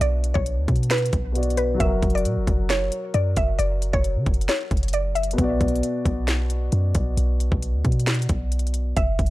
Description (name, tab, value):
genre	hip hop, trap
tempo	134 BPM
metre	4/4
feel	half-time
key	B harmonic minor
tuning	A4 = 440 Hz
part	mallet-like synth pluck	melody	0.0-5.3, 9.0-9.3 s	B4 to E5	-26 LUFS	equal	chorus
part	dark grand piano	accompaniment	0.0-9.0 s	B2 to D5	-29 LUFS	left 2 dB	none
part	warm 808-style bass	bass	0.0-9.3 s	F#1 to C#3	-23 LUFS	equal	none
part	trap drum kit	drums	0.0-9.3 s	finger snaps, hi-hat, kick drum, snare drum	-24 LUFS	equal	none
room	digital ambience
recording	dry, gritty hardware recording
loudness	-20 LUFS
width	side -17 dB against mid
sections	0.0-9.3 A section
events	none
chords	0.0 Bm; 1.8 F#; 5.4 Bm